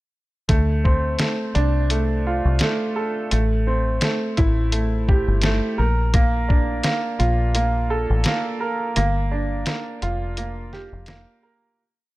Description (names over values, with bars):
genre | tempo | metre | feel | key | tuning
hip hop, boom-bap hip-hop | 85 BPM | 4/4 | swing 55% on 16ths | D minor | A4 = 440 Hz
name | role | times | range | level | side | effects
warm upright piano | accompaniment | 0.5-11.8 s | A3 to Bb4 | -24 LUFS | right 2 dB | high-pass filter, low-pass filter
deep dub fingered electric bass | bass | 0.5-11.2 s | F1 to D2 | -21 LUFS | equal | none
lo-fi sampler-style drum kit | drums | 0.5-11.3 s | hi-hat, kick drum, snare drum | -21 LUFS | equal | none
room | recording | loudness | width
little or no reverb | none | -19 LUFS | side -18 dB against mid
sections
0.5-11.8 verse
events
break 9.0-11.8; fade-out 9.0-11.8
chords
0.5 Dm7; 3.3 Am7; 5.8 Bbmaj7; 9.0 Gm7